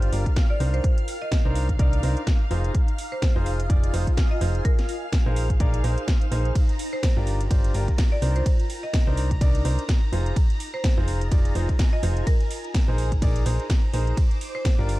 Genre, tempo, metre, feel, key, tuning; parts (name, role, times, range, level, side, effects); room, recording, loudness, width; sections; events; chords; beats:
piano house; 126 BPM; 4/4; swing 57% on 16ths; C minor; A4 = 439 Hz
string machine, violins; sustained chords; 0.0-15.0 s; F5 to D7; -38 LUFS; equal; ensemble chorus, sidechain pumping
clear concert grand piano; riff; 0.0-15.0 s; D4 to D5; -32 LUFS; equal; sidechain pumping, digital delay
solid FM bass; bass; 0.0-15.0 s; F1 to C2; -24 LUFS; equal; sidechain pumping
house drum kit; drums; 0.0-15.0 s; hi-hat, ride cymbal, snare drum; -34 LUFS; equal
granular cloud pad; texture; 0.0-15.0 s; Eb4 to D6; -37 LUFS; equal; built-in reverb, sidechain pumping
electronic kick drum; drums; 0.3-14.8 s; -21 LUFS; equal
marimba with medium hard mallets; melody; 0.5-14.7 s; Bb4 to Eb5; -33 LUFS; right 1 dB; digital delay
digital ambience; dark, warm production; -20 LUFS; side -18 dB against mid
0.0-15.0 A section
0.0 Gm7; 0.6 Cm9; 2.5 Fm7; 4.6 Bb9sus4; 6.6 Gm7; 8.2 Cm9; 10.1 Fm7; 12.3 Bb9sus4; 14.2 Gm7
0.36 | 0.84 1.32 1.79 2.27 | 2.75 3.22 3.70 4.17 | 4.65 5.13 5.60 6.08 | 6.55 7.03 7.51 7.98 | 8.46 8.94 9.41 9.89 | 10.36 10.84 11.32 11.79 | 12.27 12.74 13.22 13.70 | 14.17 14.65